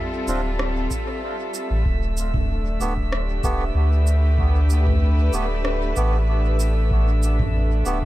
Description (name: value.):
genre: ambient dub.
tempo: 95 BPM.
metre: 4/4.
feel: straight.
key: unclear.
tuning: A4 = 440 Hz.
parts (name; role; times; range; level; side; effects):
rich studio string section; sustained chords; 0.0-8.1 s; G3 to B4; -28 LUFS; left 1 dB; none.
drifting glass-harmonics texture; texture; 0.0-8.1 s; E5; -33 LUFS; right 2 dB; chorus, built-in reverb.
melodica; stabs; 0.3-8.0 s; A3 to G4; -31 LUFS; right 2 dB; dub echo.
warm sub bass; bass; 0.3-8.1 s; D1 to D2; -20 LUFS; equal; none.
organic electronic drum kit; drums; 0.3-8.0 s; cabasa, rim click, toms; -31 LUFS; equal; overdrive, dub echo.
electronic kick drum; drums; 0.9-8.1 s; none; -26 LUFS; equal; none.
room: little or no reverb.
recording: none.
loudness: -19 LUFS.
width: side -16 dB against mid.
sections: 0.0-8.1 A section.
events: none.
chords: 0.0 Dm7; 1.9 Gadd9/D.